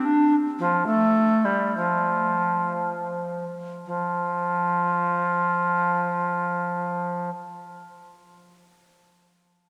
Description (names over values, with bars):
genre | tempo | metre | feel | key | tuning
classical, baroque-style fantasia for unaccompanied recorder | 52-77 BPM (dotted quarters) | 6/8 | rubato | F major | A4 = 444 Hz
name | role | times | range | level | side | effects
bass recorder | solo | 0.0-7.3 s | F3 to D4 | -24 LUFS | equal | none
room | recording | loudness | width
wet church reverb, RT60 3.7 s | none | -24 LUFS | mono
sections
0.0-3.8 A section; 3.8-8.4 B section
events
slowing down 0.0-3.8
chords
none